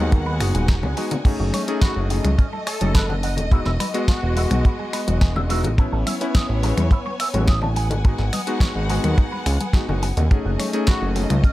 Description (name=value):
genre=nu-disco, nu disco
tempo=106 BPM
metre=4/4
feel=straight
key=F# dorian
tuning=A4 = 440 Hz
part: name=warm electric grand piano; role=accompaniment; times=0.0-11.3 s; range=G#3 to D#5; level=-27 LUFS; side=left 2 dB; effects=analog delay
part: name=warm symphonic violin section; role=sustained chords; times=0.0-11.5 s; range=G#3 to G#5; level=-31 LUFS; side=equal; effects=sidechain pumping
part: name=fat analog bass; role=bass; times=0.0-11.4 s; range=D#1 to E2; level=-21 LUFS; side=equal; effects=none
part: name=electric guitar with an envelope filter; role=riff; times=0.1-11.5 s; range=B3 to A5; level=-31 LUFS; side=right 3 dB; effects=wide subtle chorus, analog delay
part: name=house drum kit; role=drums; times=0.1-11.5 s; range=crash cymbal, finger snaps, hi-hat, snare drum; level=-29 LUFS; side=left 1 dB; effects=studio reverb, analog delay
part: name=kick drum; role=drums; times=0.1-11.5 s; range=none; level=-16 LUFS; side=equal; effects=studio reverb
part: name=congas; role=percussion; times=0.6-11.4 s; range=none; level=-29 LUFS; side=left 3 dB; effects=analog delay
part: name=wide unison lead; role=melody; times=1.8-4.7, 10.9-11.0 s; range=F#4 to A4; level=-31 LUFS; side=equal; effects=analog delay
room=light reverb, studio ambience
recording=echo-heavy mix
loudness=-18 LUFS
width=side -16 dB against mid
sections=0.0-11.5 A section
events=none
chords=0.0 G#m7; 1.3 F#m69; 3.5 Emaj9; 5.8 Amaj9; 7.8 G#m7